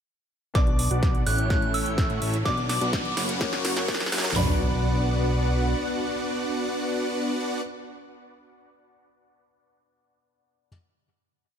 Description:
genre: EDM, festival progressive house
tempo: 126 BPM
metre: 4/4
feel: straight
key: B minor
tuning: A4 = 439 Hz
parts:
  - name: felt-muted upright piano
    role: accompaniment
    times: 0.5-10.7 s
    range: A2 to D5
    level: -34 LUFS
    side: left 4 dB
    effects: sidechain pumping, dub echo
  - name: soft synth bell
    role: melody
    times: 0.6-7.6 s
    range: B5 to F#6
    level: -32 LUFS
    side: right 2 dB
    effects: chorus, dub echo
  - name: lush unison pad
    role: sustained chords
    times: 1.2-7.6 s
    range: B3 to D6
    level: -36 LUFS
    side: left 1 dB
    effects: chorus, phaser, sidechain pumping
  - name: big supersaw lead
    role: riff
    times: 0.6-7.6 s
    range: A3 to A#5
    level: -29 LUFS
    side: equal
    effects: sidechain pumping, low-pass filter, dub echo
  - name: fat analog bass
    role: bass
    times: 0.6-5.7 s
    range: F#1 to A2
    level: -27 LUFS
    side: equal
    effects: sidechain pumping
  - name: big-room dance drum kit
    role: drums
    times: 0.6-4.5 s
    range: hi-hat, kick drum, snare drum, toms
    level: -25 LUFS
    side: equal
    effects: none
  - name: big-room dance drum kit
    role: drums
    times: 0.6-4.4 s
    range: hi-hat, snare drum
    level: -31 LUFS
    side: right 1 dB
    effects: high-pass filter on snare, high-pass filter on hats
  - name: riser and impact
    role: sound effects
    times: 2.1-7.7 s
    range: none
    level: -33 LUFS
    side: equal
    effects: none
room: light reverb, digital ambience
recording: high-pass filter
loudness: -22 LUFS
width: side -8 dB against mid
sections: 0.6-4.4 build; 4.4-8.2 final chord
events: build-up 0.6-4.4; drum fill 0.6-4.4; filter sweep on supersaw synth 0.6-4.4; filter sweep on analog synth pad 0.6-4.4; filter sweep 0.6-4.4; riser 2.1-4.4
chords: 0.6 Bm; 1.5 A; 2.5 Bm; 3.4 F#; 4.4 Bm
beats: | 0.55 1.03 1.50 1.98 | 2.46 2.93 3.41 3.88 | 4.36 4.84 5.31 5.79 | 6.27 6.74 7.22 7.69

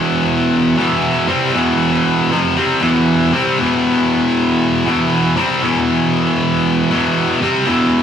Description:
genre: rock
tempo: 117 BPM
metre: 4/4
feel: straight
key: E minor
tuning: A4 = 440 Hz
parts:
  - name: high-gain distorted guitar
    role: solo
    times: 0.0-8.0 s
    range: E2 to C4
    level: -13 LUFS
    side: equal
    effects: distortion, tape echo
room: wet booth ambience, RT60 0.2 s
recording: rough rehearsal-room recording, warm saturation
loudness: -13 LUFS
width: side -8 dB against mid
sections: 0.0-8.0 A section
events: none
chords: 0.0 Em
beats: 0.25 | 0.76 1.28 1.79 2.30 | 2.81 3.32 3.84 4.35 | 4.86 5.37 5.88 6.39 | 6.90 7.41 7.91

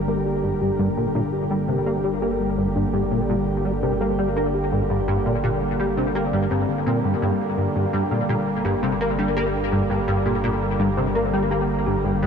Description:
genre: ambient, sequencer-driven space music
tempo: 84 BPM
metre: 4/4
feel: straight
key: G minor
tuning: A4 = 440 Hz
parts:
  - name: sweeping resonant pad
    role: sustained chords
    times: 0.0-12.3 s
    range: D3 to Bb4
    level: -24 LUFS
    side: right 2 dB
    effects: chorus, shimmer reverb
  - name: analog drone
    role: bass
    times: 0.0-12.3 s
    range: G1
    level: -31 LUFS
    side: equal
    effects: chorus
  - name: thumb-piano-like synth pluck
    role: arpeggios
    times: 0.1-12.1 s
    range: D3 to G4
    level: -29 LUFS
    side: left 4 dB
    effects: chorus, auto-pan, ping-pong delay, shimmer reverb
  - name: plucky analog bass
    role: riff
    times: 0.1-12.3 s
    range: G2 to Bb3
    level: -23 LUFS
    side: equal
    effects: ensemble chorus, ping-pong delay, shimmer reverb
room: wet huge ambient reverb, RT60 8.1 s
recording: dark, warm production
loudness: -20 LUFS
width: side -6 dB against mid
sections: 0.0-12.3 A section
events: filter sweep on synth arpeggio sound 0.0-12.3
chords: 0.0 Gm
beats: 0.26 0.97 | 1.69 2.40 3.12 3.83 | 4.54 5.26 5.97 6.69 | 7.40 8.12 8.83 9.54 | 10.26 10.97 11.69

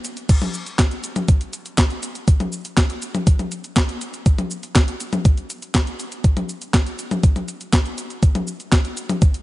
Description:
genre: italo disco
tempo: 121 BPM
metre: 4/4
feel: straight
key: none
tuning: none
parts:
  - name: clean 12-bit digital drum machine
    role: drums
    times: 0.0-9.4 s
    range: cabasa, crash cymbal, handclaps, hi-hat, snare drum, toms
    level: -23 LUFS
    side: left 1 dB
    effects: overdrive
  - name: electronic kick drum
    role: drums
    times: 0.3-9.3 s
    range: none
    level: -15 LUFS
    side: equal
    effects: overdrive
room: little or no reverb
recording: nothing above 10.7 kHz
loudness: -18 LUFS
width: side -18 dB against mid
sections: 0.3-9.4 A section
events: none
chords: none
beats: | 0.29 0.79 1.28 1.78 | 2.28 2.77 3.27 3.76 | 4.26 4.75 5.25 5.75 | 6.24 6.74 7.24 7.73 | 8.23 8.72 9.22

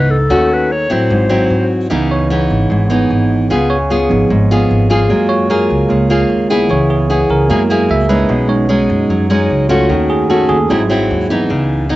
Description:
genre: bossa nova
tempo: 150 BPM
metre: 4/4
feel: straight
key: C# minor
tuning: A4 = 439 Hz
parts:
  - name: breathy clarinet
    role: melody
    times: 0.0-1.7 s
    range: A4 to C#5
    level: -18 LUFS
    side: left 2 dB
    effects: cassette tape
  - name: bell-like tine electric piano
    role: accompaniment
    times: 0.0-11.5 s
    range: E3 to E5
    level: -16 LUFS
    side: right 3 dB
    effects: cassette tape
  - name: nylon-string guitar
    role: accompaniment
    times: 0.0-12.0 s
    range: G#2 to G#4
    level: -14 LUFS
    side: left 1 dB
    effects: cassette tape
  - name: upright bass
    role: bass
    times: 0.0-12.0 s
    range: G#1 to A2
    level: -17 LUFS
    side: equal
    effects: none
room: light reverb, small room ambience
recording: home recording on cassette, nothing above 7.7 kHz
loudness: -11 LUFS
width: side -16 dB against mid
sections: 0.0-1.9 A section; 1.9-12.0 B section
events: tine electric piano solo 1.9-12.0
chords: 0.3 D#m7b5; 1.1 G#7b13; 1.9 C#m9; 3.5 C#7; 5.1 F#maj9; 6.7 C#m7; 7.5 F#9; 8.3 B69; 9.9 D#m7b5; 10.7 G#7b13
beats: | 0.30 0.70 1.10 1.50 | 1.90 2.30 2.70 3.10 | 3.50 3.90 4.30 4.70 | 5.10 5.50 5.90 6.30 | 6.70 7.10 7.50 7.90 | 8.30 8.70 9.10 9.50 | 9.90 10.30 10.70 11.10 | 11.50 11.90

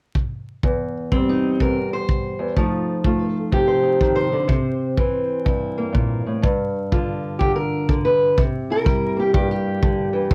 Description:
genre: acoustic country blues, solo or duo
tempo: 124 BPM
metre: 4/4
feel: swing 64% on 8ths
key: C mixolydian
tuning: A4 = 440 Hz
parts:
  - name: kick drum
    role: drums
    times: 0.2-10.3 s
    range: none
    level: -24 LUFS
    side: equal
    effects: none
  - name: fingerpicked steel-string acoustic guitar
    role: melody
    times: 0.6-10.3 s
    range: E2 to C5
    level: -22 LUFS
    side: equal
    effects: none
room: wet booth ambience, RT60 0.3 s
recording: worn, warbling old tape, cassette tape, vinyl crackle, warbly pitch drift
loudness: -21 LUFS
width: mono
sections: 0.6-8.4 A section; 8.4-10.3 B section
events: none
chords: 0.0 N.C.; 0.6 C; 2.6 F7; 4.5 C7; 6.4 G5; 8.4 C7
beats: 0.15 | 0.63 1.11 1.59 2.08 | 2.56 3.04 3.52 4.01 | 4.49 4.98 5.46 5.94 | 6.43 6.91 7.40 7.88 | 8.37 8.85 9.33 9.82 | 10.30

